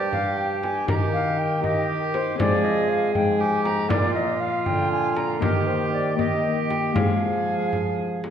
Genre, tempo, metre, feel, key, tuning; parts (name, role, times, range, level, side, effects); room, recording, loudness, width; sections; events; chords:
classical, renaissance-style consort dance; 79 BPM (dotted quarters); 6/8; straight; F dorian; A4 = 440 Hz
baroque flute; melody; 0.0-8.2 s; Bb4 to Bb5; -26 LUFS; left 1 dB
rich viola; second line; 0.0-8.3 s; F4 to Ab4; -27 LUFS; right 4 dB
Celtic harp; accompaniment; 0.0-8.3 s; G2 to Bb4; -28 LUFS; left 4 dB
clear trombone; bass; 0.0-8.2 s; G2 to F3; -29 LUFS; right 2 dB
frame drum; percussion; 0.1-8.3 s; -29 LUFS; equal
wet scoring stage reverb, RT60 1.8 s; -20 LUFS; side -8 dB against mid
0.0-8.3 A section
0.0 Gm; 0.9 Eb; 2.4 Fm; 3.9 Bb; 5.4 Eb; 7.0 Fm